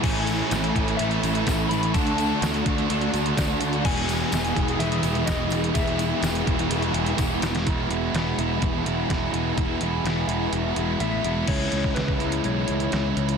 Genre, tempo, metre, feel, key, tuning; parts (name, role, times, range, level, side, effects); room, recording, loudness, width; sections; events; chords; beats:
rock, shoegaze and dream pop; 126 BPM; 4/4; straight; E major; A4 = 439 Hz
soft struck synth lead; melody; 0.0-7.2, 11.0-13.4 s; B4 to B5; -32 LUFS; left 5 dB; chorus, slapback echo
biting overdriven guitar; riff; 0.0-13.4 s; E2 to G#4; -28 LUFS; right 14 dB; reverse reverb
cranked stack guitar; riff; 0.0-7.7 s; E2 to D4; -29 LUFS; equal; overdrive
crunchy overdriven guitar; riff; 0.0-13.4 s; A2 to F#4; -30 LUFS; left 13 dB; wide subtle chorus
fuzz picked electric bass; bass; 0.0-13.3 s; E1 to D2; -27 LUFS; equal; overdrive
detuned 8-bit digital drum machine; drums; 0.0-13.4 s; crash cymbal, hi-hat, kick drum, snare drum; -28 LUFS; equal
tambourine; percussion; 0.0-7.5 s; -42 LUFS; left 11 dB
warbly tape-like pad; sustained chords; 0.1-13.4 s; E4 to D#6; -34 LUFS; left 1 dB; chorus, built-in reverb
little or no reverb; dense, heavily limited modern master; -21 LUFS; side -6 dB against mid
0.0-7.7 A section; 7.7-11.5 B section; 11.5-13.4 C section
drum fill 7.2-7.7; kick and snare drop out 10.5-11.5
0.0 Amaj7; 2.0 Dmaj7; 3.9 Emaj7; 7.7 E; 11.5 C#m7
| 0.05 0.53 1.00 1.48 | 1.95 2.43 2.90 3.38 | 3.86 4.33 4.81 5.29 | 5.76 6.24 6.71 7.19 | 7.67 8.14 8.62 9.10 | 9.58 10.06 10.54 11.01 | 11.49 11.97 12.45 12.93